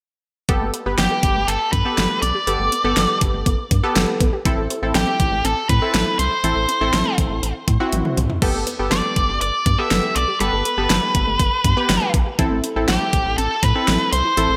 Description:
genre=synth-pop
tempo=121 BPM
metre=4/4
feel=straight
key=G major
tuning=A4 = 440 Hz
part: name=funky polysynth comp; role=accompaniment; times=0.5-14.6 s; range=B3 to B4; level=-26 LUFS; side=equal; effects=chorus
part: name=resonant blip pluck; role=arpeggios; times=0.5-14.6 s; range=E3 to G4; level=-33 LUFS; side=equal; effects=none
part: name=rubbery square bass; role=bass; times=0.5-14.6 s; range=G1 to A2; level=-26 LUFS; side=equal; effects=none
part: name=pop drum kit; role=drums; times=0.5-14.5 s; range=crash cymbal, hi-hat, kick drum, snare drum, toms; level=-23 LUFS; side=equal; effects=overdrive, gated reverb
part: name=octave-fuzz lead guitar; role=melody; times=1.0-14.6 s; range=G4 to E5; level=-23 LUFS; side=equal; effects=distortion, digital delay
room=moderate plate reverb, RT60 1.4 s, digital ambience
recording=bright 1980s-style digital production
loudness=-19 LUFS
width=mono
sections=0.5-14.6 A section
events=drum fill 7.9-8.4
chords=0.5 Gadd9; 4.5 Am; 8.4 Gadd9; 12.4 Am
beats=| 0.49 0.98 1.48 1.98 | 2.47 2.97 3.46 3.96 | 4.45 4.95 5.45 5.94 | 6.44 6.93 7.43 7.92 | 8.42 8.92 9.41 9.91 | 10.40 10.90 11.40 11.89 | 12.39 12.88 13.38 13.88 | 14.37

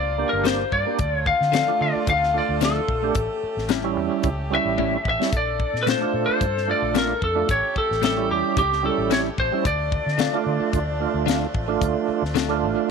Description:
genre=straight-eighth soul blues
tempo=111 BPM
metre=4/4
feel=swing 53% on 16ths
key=D harmonic minor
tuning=A4 = 441 Hz
part: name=lightly driven lead guitar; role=melody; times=0.0-12.9 s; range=G4 to F5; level=-23 LUFS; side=left 2 dB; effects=none
part: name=warm horn section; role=sustained chords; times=0.0-12.9 s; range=F3 to A4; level=-34 LUFS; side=right 1 dB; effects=none
part: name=vintage muted fingered electric bass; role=bass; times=0.0-12.7 s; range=G1 to D3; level=-28 LUFS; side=equal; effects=none
part: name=percussive tonewheel organ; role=accompaniment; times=0.2-12.9 s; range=G3 to G4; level=-25 LUFS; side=right 12 dB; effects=slow rotary speaker, overdrive, chorus vibrato
part: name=direct-recorded clean electric guitar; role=stabs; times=0.4-12.5 s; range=G2 to F4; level=-30 LUFS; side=left 13 dB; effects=phaser, tape echo
part: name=tight funk drum kit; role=drums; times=0.5-12.5 s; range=hi-hat, kick drum, snare drum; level=-26 LUFS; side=left 4 dB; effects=none
room=light reverb, small room reverb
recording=1960s-style stereo with parts hard left and right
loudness=-20 LUFS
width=side -5 dB against mid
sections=0.0-12.9 A section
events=drum fill 4.8-5.3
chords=0.0 Gm; 1.0 Dm; 3.2 A7; 5.3 Bbmaj7; 7.5 A7; 9.6 Dm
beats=0.45 | 0.99 1.53 2.07 2.61 | 3.15 3.70 4.24 4.78 | 5.32 5.86 6.40 6.94 | 7.48 8.03 8.57 9.11 | 9.65 10.19 10.73 11.27 | 11.81 12.35 12.89

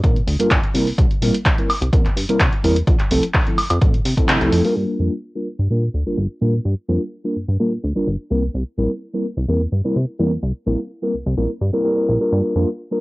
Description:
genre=filtered disco house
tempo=127 BPM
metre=4/4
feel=straight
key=G dorian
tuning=A4 = 440 Hz
part: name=mellow tine electric piano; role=accompaniment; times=0.0-13.0 s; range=F3 to Bb4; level=-20 LUFS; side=equal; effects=medium stereo tremolo, phaser, sidechain pumping, low-pass filter
part: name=plucky analog bass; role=bass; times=0.0-12.7 s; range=G1 to C3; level=-20 LUFS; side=equal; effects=sidechain pumping, low-pass filter
part: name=electronic kick drum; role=drums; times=0.0-4.3 s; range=none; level=-17 LUFS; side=equal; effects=cassette tape
part: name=punchy analog drum machine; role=drums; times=0.0-4.7 s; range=handclaps, hi-hat, woodblock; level=-22 LUFS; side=equal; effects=sidechain pumping on hats, cassette tape, sidechain pumping on perc
room=light reverb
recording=home recording on cassette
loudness=-17 LUFS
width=side -21 dB against mid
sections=0.0-4.8 A section; 4.8-13.0 B section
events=filter sweep 0.0-4.8, 4.8-13.0; kick drops out 4.3-4.8; band accent 4.3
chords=0.0 Gm7; 0.7 C7; 2.9 Fmaj7; 4.8 Gm7; 8.3 C7; 12.3 Gm7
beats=0.04 0.51 | 0.98 1.46 1.93 2.40 | 2.87 3.35 3.82 4.29 | 4.76 5.24 5.71 6.18 | 6.65 7.12 7.60 8.07 | 8.54 9.02 9.49 9.96 | 10.43 10.90 11.38 11.85 | 12.32 12.79

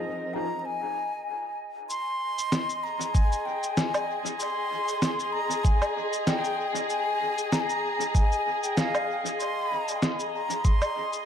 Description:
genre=ambient dub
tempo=96 BPM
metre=4/4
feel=swing 55% on 16ths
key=unclear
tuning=A4 = 440 Hz
part: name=bright wooden flute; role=melody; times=0.0-11.3 s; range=Eb5 to C6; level=-29 LUFS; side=left 1 dB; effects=dub echo
part: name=dark chamber string section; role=sustained chords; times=0.0-11.3 s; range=F3 to Bb4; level=-34 LUFS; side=left 3 dB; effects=none
part: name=electronic shaker, snare drum and woodblock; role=drums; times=1.9-11.2 s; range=none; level=-30 LUFS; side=equal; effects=dub echo
part: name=drifting glass-harmonics texture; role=texture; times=1.9-11.3 s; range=Eb5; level=-34 LUFS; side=right 2 dB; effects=chorus, built-in reverb
part: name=electronic kick drum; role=drums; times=3.1-10.8 s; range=none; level=-21 LUFS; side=equal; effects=none
room=moderate spring reverb, RT60 2.0 s, small room ambience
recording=echo-heavy mix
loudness=-25 LUFS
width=side -8 dB against mid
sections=0.0-1.9 A section; 1.9-11.3 B section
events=filter sweep on string section 0.0-1.9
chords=0.0 Fm7; 1.9 Ab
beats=0.02 0.65 1.27 | 1.90 2.52 3.15 3.77 | 4.40 5.02 5.65 6.27 | 6.90 7.52 8.15 8.77 | 9.40 10.02 10.65

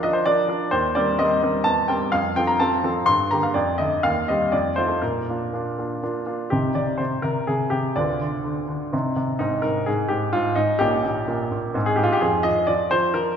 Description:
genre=classical-period piano sonatina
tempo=126 BPM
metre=3/4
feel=rubato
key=Bb major, C minor from 6.5 s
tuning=A4 = 441 Hz
part: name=clear baby grand piano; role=solo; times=0.0-13.4 s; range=Ab1 to C6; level=-20 LUFS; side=equal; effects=none
room=wet concert hall reverb, RT60 2.0 s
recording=recorded in a church or concert hall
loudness=-20 LUFS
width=side -8 dB against mid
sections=0.0-6.5 A section; 6.5-13.4 B section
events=none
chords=0.0 Bb; 0.7 Cm7/Eb; 1.7 C7/E; 2.1 F; 3.1 Gm; 3.6 Dm/F; 4.0 Cm/Eb; 4.5 F7; 5.0 Bb; 6.5 Cm; 8.0 Dm6; 8.9 Cm; 9.4 Ab; 10.8 Eb7/Bb; 11.8 Ab; 12.2 F5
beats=0.24 | 0.71 1.19 1.66 | 2.13 2.61 3.08 | 3.56 4.04 4.53 | 5.02 5.52 6.01 | 6.51 6.99 7.47 | 7.97 8.45 8.93 | 9.40 9.87 10.34 | 10.81 11.28 11.75 | 12.22 12.69 13.15

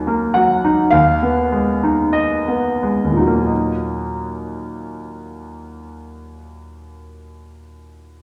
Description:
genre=classical, romantic character piece for solo piano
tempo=42-52 BPM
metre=4/4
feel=rubato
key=Eb minor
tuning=A4 = 437 Hz
part: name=clear concert grand piano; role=solo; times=0.0-8.2 s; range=Eb2 to Ab5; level=-19 LUFS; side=equal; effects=none
room=wet recital hall reverb, RT60 1.6 s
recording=heard from further back in the room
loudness=-17 LUFS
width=mono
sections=0.0-3.5 A section; 3.5-8.2 B section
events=slowing down 0.0-3.5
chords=0.0 Ebm; 0.9 Abm/Eb; 3.5 Ebm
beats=0.93 2.15 | 3.49 4.71 5.93 7.15

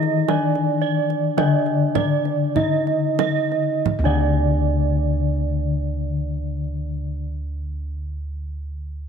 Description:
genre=Javanese gamelan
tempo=44-59 BPM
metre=4/4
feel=straight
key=unclear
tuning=A4 = 440 Hz
part: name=gamelan-type bronze metallophone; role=melody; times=0.0-7.2 s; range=D4 to Eb4+20c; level=-26 LUFS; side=left 1 dB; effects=none
part: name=gamelan-type bronze metallophone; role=accompaniment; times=0.0-7.3 s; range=D3 to Eb3+20c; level=-24 LUFS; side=left 8 dB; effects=none
part: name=gamelan-type bossed gongs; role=arpeggios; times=0.0-7.3 s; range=D5 to Eb5+20c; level=-31 LUFS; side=left 6 dB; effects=slapback echo
part: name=gamelan-type bronze metallophone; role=arpeggios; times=0.0-7.3 s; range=D5 to Eb5+20c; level=-25 LUFS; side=right 12 dB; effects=none
part: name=gamelan-type bossed gongs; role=bass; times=0.0-7.2 s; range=D2 to Eb4+20c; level=-25 LUFS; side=right 1 dB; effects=none
part: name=kendang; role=percussion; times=0.0-4.5 s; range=none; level=-26 LUFS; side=right 10 dB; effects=none
room=moderate plate reverb, RT60 3.3 s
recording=1960s-style stereo with parts hard left and right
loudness=-19 LUFS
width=side -7 dB against mid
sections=0.0-3.9 A section; 3.9-9.1 B section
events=slowing down 0.0-3.9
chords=none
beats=0.29 1.38 2.56 | 3.86 5.22 6.59

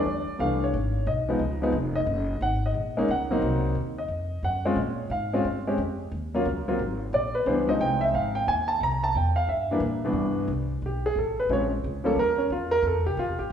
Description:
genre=jazz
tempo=178 BPM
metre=4/4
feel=swing 65% on 8ths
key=unclear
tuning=A4 = 443 Hz
part: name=warm concert grand piano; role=melody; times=0.0-13.5 s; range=C2 to Bb5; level=-25 LUFS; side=equal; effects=none
part: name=upright bass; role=bass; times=0.0-13.5 s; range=F1 to Bb2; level=-30 LUFS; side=equal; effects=none
room=wet large studio reverb, RT60 1.3 s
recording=band playing live in one room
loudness=-24 LUFS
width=side -8 dB against mid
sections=0.0-10.2 A section; 10.2-13.5 B section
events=grand piano solo 10.2-13.5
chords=0.0 Fmaj13; 0.7 Abm; 1.4 Dbadd9; 2.1 Gb6; 3.4 Cm7b5; 4.1 F5; 4.8 Bbm7; 6.1 Ebm7; 6.8 Absus2; 7.5 Dbmaj9; 8.8 C7; 10.2 Cmaj7; 11.5 Bbm7; 12.2 Dbm69/Eb (rootless); 12.8 Fmaj7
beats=0.06 0.40 | 0.73 1.07 1.41 1.74 | 2.08 2.41 2.75 3.09 | 3.42 3.76 4.10 4.43 | 4.77 5.11 5.45 5.78 | 6.12 6.46 6.79 7.13 | 7.46 7.80 8.14 8.47 | 8.81 9.15 9.48 9.82 | 10.15 10.49 10.82 11.16 | 11.49 11.83 12.16 12.50 | 12.84 13.17 13.50

